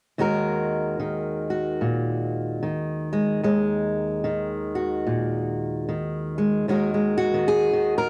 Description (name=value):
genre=folk, solo fingerstyle acoustic guitar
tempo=74 BPM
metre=4/4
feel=swing 62% on 8ths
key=Eb minor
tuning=A4 = 440 Hz
part: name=fingerpicked steel-string acoustic guitar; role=solo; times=0.2-8.1 s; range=Eb2 to Bb4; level=-25 LUFS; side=equal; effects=cassette tape
room=light reverb, small room ambience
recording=home recording on cassette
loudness=-25 LUFS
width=mono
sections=0.2-6.7 A section; 6.7-8.1 B section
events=none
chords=0.2 Ebm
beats=| 0.18 0.99 1.80 2.62 | 3.43 4.24 5.05 5.86 | 6.67 7.49